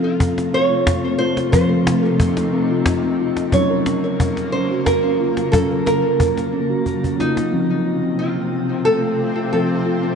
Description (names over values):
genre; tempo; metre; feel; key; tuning
world meditative, meditative tuned percussion; 90 BPM; 3/4; straight; F phrygian dominant; A4 = 440 Hz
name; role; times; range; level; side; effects
nylon-string guitar; melody; 0.0-10.2 s; Eb4 to Db5; -22 LUFS; right 2 dB; shimmer reverb, ping-pong delay
shimmering ambient pad; sustained chords; 0.0-10.2 s; C3 to F4; -24 LUFS; equal; chorus, built-in reverb, shimmer reverb
steel tongue drum; arpeggios; 0.0-10.2 s; F3 to Bb4; -19 LUFS; left 1 dB; shimmer reverb, ping-pong delay
cajon; percussion; 0.0-7.5 s; none; -21 LUFS; left 1 dB; none
room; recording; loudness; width
wet echo chamber reverb, RT60 1.9 s, studio reverb; cassette tape, nothing above 10.5 kHz; -16 LUFS; side -6 dB against mid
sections
0.0-7.5 A section; 7.5-10.2 B section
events
drum fill 6.9-7.5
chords
0.0 F; 3.5 Gb; 7.5 F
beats
0.20 0.87 | 1.53 2.20 2.86 | 3.53 4.20 4.86 | 5.53 6.19 6.86 | 7.52 8.19 8.86 | 9.52